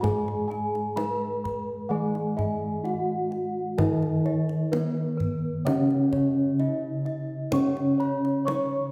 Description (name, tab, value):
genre	Javanese gamelan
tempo	64 BPM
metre	4/4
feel	straight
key	C# slendro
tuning	A4 = 440 Hz
part	gamelan-type bronze metallophone	melody	0.0-8.9 s	B3-40c to C#5	-31 LUFS	equal	none
part	gamelan-type bronze metallophone	accompaniment	0.0-8.9 s	C#3 to G#3+20c	-33 LUFS	equal	none
part	gamelan-type bossed gongs	arpeggios	0.0-8.9 s	B4-40c to C#6	-38 LUFS	equal	none
part	gamelan-type bronze metallophone	arpeggios	0.0-8.9 s	B4-40c to C#6	-38 LUFS	equal	none
part	gamelan-type bossed gongs	bass	0.0-8.9 s	G#2+20c to G#4+20c	-35 LUFS	equal	none
part	kendang	percussion	0.0-8.7 s	none	-36 LUFS	equal	none
room	wet recital hall reverb, RT60 1.6 s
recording	recorded in a church or concert hall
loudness	-27 LUFS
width	mono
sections	0.0-8.9 A section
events	none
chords	none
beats	| 0.02 0.96 1.90 2.84 | 3.77 4.71 5.65 6.59 | 7.53 8.46